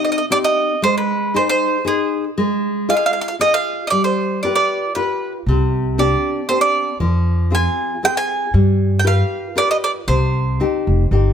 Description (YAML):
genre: italian folk, Italian serenade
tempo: 116 BPM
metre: 3/4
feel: swing 53% on 8ths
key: C harmonic minor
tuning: A4 = 435 Hz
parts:
  - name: mandolin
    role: melody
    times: 0.0-11.1 s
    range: Ab4 to Ab5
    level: -18 LUFS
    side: right 3 dB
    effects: none
  - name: nylon-string guitar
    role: accompaniment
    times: 0.0-11.3 s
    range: C3 to Eb5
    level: -20 LUFS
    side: left 2 dB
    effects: none
  - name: upright bass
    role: bass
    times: 5.5-11.3 s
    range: F1 to G2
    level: -16 LUFS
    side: equal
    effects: none
room: light reverb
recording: close, detailed microphones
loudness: -15 LUFS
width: side -8 dB against mid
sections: 0.0-11.3 A section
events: none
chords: 0.0 Cm; 0.8 Ab; 2.4 Fm7/Ab; 3.9 G7; 5.5 Csus2; 7.0 Fm; 8.5 G7; 10.1 Cm